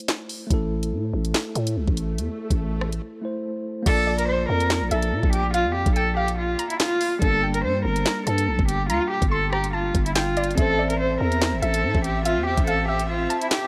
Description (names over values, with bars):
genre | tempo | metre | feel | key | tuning
hip hop, drill | 143 BPM | 4/4 | half-time | A phrygian | A4 = 440 Hz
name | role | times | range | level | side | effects
tine electric piano | accompaniment | 0.0-13.7 s | G3 to E5 | -33 LUFS | equal | low-pass filter
drill drum kit | drums | 0.1-13.6 s | crash cymbal, handclaps, hi-hat, kick drum, rim click, snare drum | -26 LUFS | equal | none
growling 808-style bass | bass | 0.5-13.3 s | G1 to Bb2 | -28 LUFS | equal | none
swell | sound effects | 1.2-3.0 s | none | -40 LUFS | equal | none
warm cello | melody | 3.9-13.7 s | E4 to C5 | -26 LUFS | equal | low-pass filter, delay
soft round pluck | second line | 4.1-13.7 s | D5 to C6 | -33 LUFS | equal | chorus, phaser, delay
rich symphonic string section | sustained chords | 10.6-13.7 s | C4 to E5 | -36 LUFS | equal | none
room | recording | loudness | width
little or no reverb | none | -23 LUFS | mono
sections
0.0-3.9 A section; 3.9-13.7 B section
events
break 0.0-3.9; swell 1.2-3.9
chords
0.0 Am; 3.9 Bb; 7.2 Gm; 10.6 Am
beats
0.09 | 0.51 0.92 1.34 1.76 | 2.18 2.60 3.02 3.44 | 3.86 4.28 4.70 5.12 | 5.54 5.96 6.38 6.80 | 7.22 7.64 8.06 8.48 | 8.90 9.32 9.74 10.15 | 10.57 10.99 11.41 11.83 | 12.25 12.67 13.09 13.51